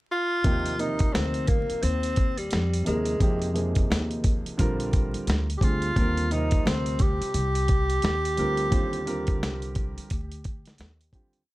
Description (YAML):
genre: hip hop, jazz-hop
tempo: 87 BPM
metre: 4/4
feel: swing 59% on 16ths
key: Eb major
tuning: A4 = 440 Hz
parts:
  - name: breathy tenor saxophone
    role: melody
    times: 0.1-10.8 s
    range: G3 to G4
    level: -28 LUFS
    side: equal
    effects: analog delay
  - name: warm upright piano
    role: accompaniment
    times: 0.4-11.4 s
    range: C3 to C5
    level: -32 LUFS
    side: right 1 dB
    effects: none
  - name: upright bass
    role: bass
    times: 0.4-11.4 s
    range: Bb1 to F2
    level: -28 LUFS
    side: equal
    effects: none
  - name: dusty soul sampler-style drum kit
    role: drums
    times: 0.4-11.5 s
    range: hi-hat, kick drum, snare drum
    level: -25 LUFS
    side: equal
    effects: none
room: light reverb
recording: vinyl crackle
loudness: -23 LUFS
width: side -18 dB against mid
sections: 0.0-0.4 pickup bar; 0.4-11.5 A section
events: fade-out 8.7-11.5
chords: 0.4 Eb5; 3.2 Fm11; 4.6 Bb13; 6.0 Eb6